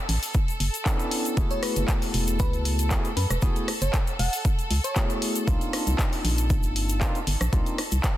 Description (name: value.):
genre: deep house.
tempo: 117 BPM.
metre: 4/4.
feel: swing 53% on 16ths.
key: unclear.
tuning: A4 = 440 Hz.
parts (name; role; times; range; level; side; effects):
rich studio violin section; texture; 0.0-8.2 s; A4; -36 LUFS; right 2 dB; sidechain pumping.
organ-like FM bass; bass; 0.1-8.0 s; E1 to F#2; -25 LUFS; equal; sidechain pumping.
deep house drum kit; drums; 0.1-8.1 s; handclaps, hi-hat, rim click; -31 LUFS; left 1 dB; none.
egg shaker; percussion; 0.2-8.1 s; none; -37 LUFS; left 4 dB; none.
electronic kick drum; drums; 0.3-8.1 s; none; -24 LUFS; equal; none.
barky tine electric piano; stabs; 0.9-7.8 s; A3 to A4; -31 LUFS; left 1 dB; vintage 12-bit sampler grit, sidechain pumping, dub echo.
bell-like FM electric piano; melody; 1.5-5.4 s; B4 to F#5; -34 LUFS; equal; chorus, phaser, digital delay.
room: little or no reverb.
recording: dense, heavily limited modern master.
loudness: -22 LUFS.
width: side -14 dB against mid.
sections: 0.0-8.2 A section.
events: none.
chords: 0.0 Bm11; 1.4 F#m11; 5.5 Cm11.